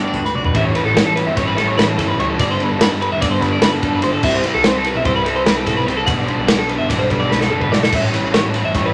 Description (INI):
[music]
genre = math rock and midwest emo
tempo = 293 BPM (eighths)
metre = 9/8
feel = straight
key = G major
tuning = A4 = 437 Hz
[part]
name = twangy electric guitar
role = accompaniment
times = 0.0-0.6 s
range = D2 to F#4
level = -30 LUFS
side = equal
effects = none
[part]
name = twelve-string electric guitar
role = arpeggios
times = 0.0-8.9 s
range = A4 to F#5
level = -22 LUFS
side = equal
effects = none
[part]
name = overdriven semi-hollow guitar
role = riff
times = 0.0-8.9 s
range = G2 to G4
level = -22 LUFS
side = equal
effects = none
[part]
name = fuzz picked electric bass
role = bass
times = 0.1-8.9 s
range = F#1 to D2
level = -27 LUFS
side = equal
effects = overdrive
[part]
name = loose indie drum kit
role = drums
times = 0.1-8.8 s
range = crash cymbal, hi-hat, kick drum, ride cymbal, snare drum, toms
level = -21 LUFS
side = equal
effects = none
[sound]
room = moderate large studio reverb, RT60 1.0 s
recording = none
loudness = -17 LUFS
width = mono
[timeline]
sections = 0.6-8.9 A section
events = drum fill 0.2-0.6, 7.3-7.9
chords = 0.0 Gmaj7; 0.6 A7; 2.4 Gmaj7; 4.2 Cmaj7; 6.1 Gmaj7; 7.9 A7